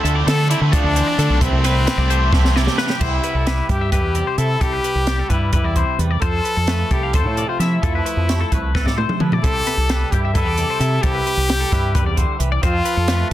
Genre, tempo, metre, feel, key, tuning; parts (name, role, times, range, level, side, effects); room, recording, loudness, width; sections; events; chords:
math rock and midwest emo; 262 BPM (eighths); 7/8; straight; A4 = 440 Hz
clear trumpet; melody; 0.0-13.3 s; C4 to A4; -22 LUFS; left 2 dB; slapback echo, plate reverb
twangy electric guitar; accompaniment; 0.0-13.3 s; C3 to C5; -27 LUFS; right 9 dB; ensemble chorus, plate reverb
twelve-string electric guitar; arpeggios; 0.0-13.3 s; G4 to F5; -26 LUFS; left 9 dB; plate reverb
cranked stack guitar; riff; 0.0-3.0 s; C3 to E4; -25 LUFS; right 2 dB; overdrive
growling fingered electric bass; bass; 0.0-13.2 s; B1 to F3; -19 LUFS; equal; overdrive
compact cocktail drum kit; drums; 0.1-13.2 s; crash cymbal, hi-hat, kick drum, snare drum, toms; -21 LUFS; equal
light reverb; dense, heavily limited modern master; -16 LUFS; side -13 dB against mid
0.0-3.0 A section; 3.0-13.3 B section
drum fill 2.3-3.0, 8.7-9.4
0.0 Dm9; 1.4 Am9/C; 6.2 Fmaj7; 9.4 Cmaj7; 12.6 F